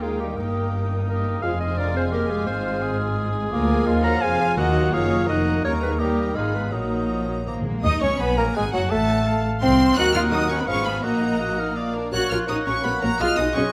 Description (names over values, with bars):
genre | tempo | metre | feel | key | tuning
quick classical-period movement for symphony orchestra | 169 BPM | 3/4 | rubato | Eb minor from 3.5 s | A4 = 440 Hz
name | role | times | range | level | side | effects
clear studio violin section | melody | 0.0-13.7 s | Gb5 to Gb6 | -34 LUFS | equal | none
clear clarinet | second line | 0.0-13.7 s | G4 to Bb5 | -32 LUFS | equal | none
concert flute | second line | 0.0-13.7 s | Gb5 to Gb6 | -34 LUFS | equal | none
mellow cor anglais | second line | 0.0-13.7 s | Eb4 to Eb5 | -33 LUFS | equal | none
warm studio violin section | second line | 0.0-13.6 s | Eb4 to Ab5 | -36 LUFS | equal | none
mellow bassoon | accompaniment | 0.0-13.7 s | Eb3 to Eb4 | -32 LUFS | equal | none
warm studio viola section | accompaniment | 0.0-13.6 s | F3 to Bb4 | -34 LUFS | equal | none
mellow French horn section | sustained chords | 0.0-13.6 s | Gb3 to Bb4 | -30 LUFS | equal | none
rich studio cello section | bass | 0.0-13.6 s | D2 to Gb4 | -30 LUFS | equal | none
rich studio double bass section | bass | 0.0-13.6 s | F1 to Eb2 | -30 LUFS | equal | none
timpani | percussion | 4.6-5.1, 7.5-7.8 s | Bb2 to Eb3 | -35 LUFS | equal | none
room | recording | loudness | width
moderate scoring stage reverb, RT60 1.8 s | none | -22 LUFS | mono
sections
0.0-7.8 A section; 7.8-13.7 B section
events
timpani fill 7.5-7.8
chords
0.4 Eb/G; 1.4 Fm; 2.5 Fm/Ab; 3.5 Bb7/D; 4.6 Ebm; 5.6 Eb7; 6.4 Abm; 6.7 Ebm/Bb; 7.5 Bb5; 7.8 Ebm; 8.9 F/A; 10.0 Ebm; 10.7 Fdim/Ab; 11.0 Ebm/Bb; 11.8 Bb; 12.1 F#/A#; 13.2 G#m7